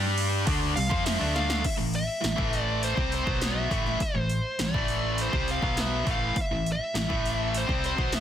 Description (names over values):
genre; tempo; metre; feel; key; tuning
hard rock; 102 BPM; 4/4; straight; A minor; A4 = 440 Hz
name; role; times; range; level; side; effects
distorted electric guitar; riff; 0.0-8.2 s; A2 to G4; -29 LUFS; equal; overdrive
hollow-body short-scale fingered electric bass; bass; 0.0-8.2 s; A1 to G2; -31 LUFS; equal; none
80s electronic pad drums; drums; 0.2-8.2 s; crash cymbal, hi-hat, kick drum, snare drum; -30 LUFS; equal; overdrive
dark smooth lead guitar; melody; 0.8-8.2 s; C5 to F5; -30 LUFS; equal; overdrive, slapback echo
room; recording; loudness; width
little or no reverb; dense, heavily limited modern master; -24 LUFS; side -10 dB against mid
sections
0.0-1.6 A section; 1.6-8.2 B section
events
drum fill 1.4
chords
0.5 C5; 1.6 Am